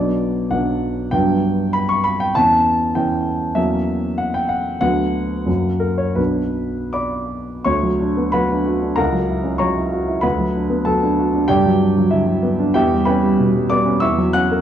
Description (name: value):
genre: classical, romantic character piece for solo piano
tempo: 75-101 BPM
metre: 2/4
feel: rubato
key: B minor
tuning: A4 = 435 Hz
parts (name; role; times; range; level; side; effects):
- warm grand piano; solo; 0.0-14.6 s; B1 to F#6; -16 LUFS; equal; none
room: wet stone room reverb, RT60 1.2 s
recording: dark, warm production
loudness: -16 LUFS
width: side -10 dB against mid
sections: 0.0-7.7 A section; 7.7-14.6 B section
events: none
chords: 0.0 Bm; 1.1 Gmaj7; 2.4 C#m7b5/E; 3.6 F#7/E; 4.8 Bm/D; 5.5 F#; 6.2 Bm; 7.7 Bm/D; 9.0 F#7/C#; 10.2 Bm/D; 11.5 Gmaj7; 12.7 C#m7b5/E; 14.0 F#7/E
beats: 0.52 | 1.14 1.75 | 2.37 2.97 | 3.57 4.20 | 4.83 5.48 | 6.18 6.96 | 7.68 8.34 | 8.98 9.60 | 10.24 10.86 | 11.49 12.12 | 12.75 13.38 | 14.02